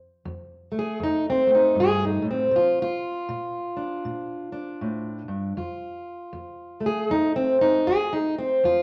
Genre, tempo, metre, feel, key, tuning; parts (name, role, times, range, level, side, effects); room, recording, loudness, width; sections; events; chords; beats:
acoustic country blues, solo or duo; 79 BPM; 4/4; swing 62% on 8ths; F major; A4 = 440 Hz
fingerpicked plugged-in steel-string acoustic guitar; solo; 0.0-8.8 s; F2 to Ab4; -24 LUFS; equal
wet club reverb, RT60 0.9 s; -24 LUFS; mono
0.0-8.8 A section
steel-string acoustic guitar solo 0.0-8.8
0.0 F; 2.5 Bb; 5.6 F
0.25 1.01 1.77 | 2.53 3.29 4.05 4.82 | 5.58 6.34 7.11 7.87 | 8.64